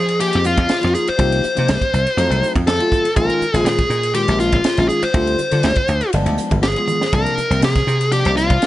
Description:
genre	electric jazz fusion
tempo	121 BPM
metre	4/4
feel	straight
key	F dorian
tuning	A4 = 439 Hz
part	dark smooth lead guitar	melody	0.0-8.7 s	F4 to C5	-18 LUFS	left 1 dB	overdrive
part	dry thumbed slap bass	bass	0.0-8.6 s	G1 to F3	-19 LUFS	equal	none
part	crisp fusion drum kit	drums	0.1-8.7 s	hi-hat, kick drum, ride cymbal, snare drum, toms	-22 LUFS	right 1 dB	none
part	barky tine electric piano	accompaniment	0.2-8.6 s	C3 to Ab4	-23 LUFS	left 1 dB	phaser
room	light reverb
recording	nothing above 10.5 kHz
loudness	-14 LUFS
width	side -15 dB against mid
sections	0.0-8.7 A section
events	drum fill 6.9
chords	0.0 Fm7; 1.2 Cm7; 2.2 F7b9; 3.2 Bbm7; 5.1 Dm7; 6.1 G7b9; 7.1 C9sus4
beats	0.20 0.70 | 1.19 1.68 2.18 2.67 | 3.17 3.66 4.16 4.65 | 5.15 5.64 6.14 6.63 | 7.13 7.63 8.12 8.62

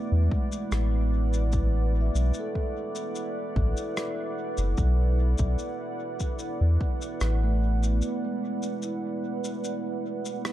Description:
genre	ambient dub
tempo	74 BPM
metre	4/4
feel	straight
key	B dorian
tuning	A4 = 438 Hz
part	deep dark ambient pad	sustained chords	0.0-10.5 s	B3 to F#5	-32 LUFS	right 2 dB	chorus, built-in reverb
part	vibraphone with soft mallets	arpeggios	0.0-10.5 s	G#3 to E5	-35 LUFS	right 2 dB	dub echo
part	warm sub bass	bass	0.1-8.0 s	F#1 to E2	-23 LUFS	equal	tube saturation
part	electronic kick drum	drums	0.3-7.0 s	none	-28 LUFS	equal	overdrive
part	shaker and rim click	drums	0.5-10.5 s	none	-38 LUFS	left 1 dB	none
room	little or no reverb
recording	dark, warm production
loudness	-25 LUFS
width	side -13 dB against mid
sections	0.0-10.5 A section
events	filter sweep on vibraphone 0.0-10.5; break 8.0-10.5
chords	0.0 Bm7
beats	0.72 | 1.53 2.34 3.15 3.96 | 4.77 5.58 6.40 7.21 | 8.02 8.83 9.64 10.45

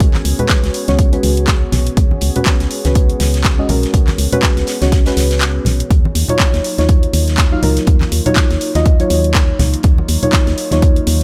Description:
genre	deep house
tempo	122 BPM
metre	4/4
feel	swing 57% on 16ths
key	Eb minor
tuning	A4 = 440 Hz
part	warbly tape-like pad	sustained chords	0.0-11.2 s	Gb3 to Db5	-29 LUFS	equal	chorus, built-in reverb, sidechain pumping
part	deep mellow chord stab	stabs	0.0-11.2 s	Gb3 to F5	-21 LUFS	equal	chorus, sidechain pumping, tape echo
part	organ-like FM bass	bass	0.0-11.2 s	Cb2 to Eb2	-19 LUFS	equal	sidechain pumping
part	damped 70s drum kit	drums	0.0-11.2 s	hi-hat, snare drum	-32 LUFS	equal	high-pass filter on hats, small room ambience, high-pass filter on snare, high-pass filter on room
part	electronic kick drum	drums	0.0-10.9 s	none	-15 LUFS	equal	overdrive, small room ambience
part	house drum kit	drums	0.0-11.2 s	handclaps, hi-hat	-23 LUFS	equal	overdrive, small room ambience
part	congas	percussion	0.1-11.2 s	none	-24 LUFS	equal	sidechain pumping on perc
room	small room ambience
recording	none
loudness	-14 LUFS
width	mono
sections	0.0-11.2 A section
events	break 5.4-5.9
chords	0.0 Db7sus4; 5.9 Ebm9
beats	| 0.01 0.50 0.99 1.48 | 1.97 2.46 2.96 3.45 | 3.94 4.43 4.92 5.41 | 5.91 6.40 6.89 7.38 | 7.87 8.37 8.86 9.35 | 9.84 10.33 10.82

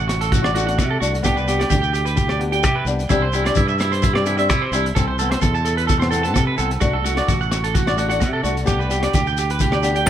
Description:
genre	highlife guitar band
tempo	129 BPM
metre	4/4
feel	swing 53% on 16ths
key	unclear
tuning	A4 = 440 Hz
part	electric guitar at the edge of break-up	arpeggios	0.0-10.1 s	E4 to A5	-22 LUFS	right 5 dB	spring reverb, tape echo
part	modern bright fingered electric bass	bass	0.0-10.1 s	A1 to C3	-22 LUFS	equal	none
part	crunchy breakbeat drum kit	drums	0.1-10.1 s	hi-hat, kick drum, rim click	-23 LUFS	equal	none
part	shekere	percussion	0.1-10.1 s	none	-28 LUFS	left 7 dB	none
part	flamenco guitar	accompaniment	0.4-10.1 s	E3 to G4	-24 LUFS	left 4 dB	none
room	light reverb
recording	none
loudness	-16 LUFS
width	side -10 dB against mid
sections	0.0-10.1 A section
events	none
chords	0.0 D; 1.3 G/C; 3.1 Cadd9; 5.0 Amadd9/C; 6.8 D; 8.7 G/C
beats	0.32 0.79 | 1.25 1.72 2.18 2.65 | 3.11 3.57 4.04 4.50 | 4.97 5.43 5.89 6.36 | 6.82 7.29 7.75 8.21 | 8.68 9.14 9.61 10.07

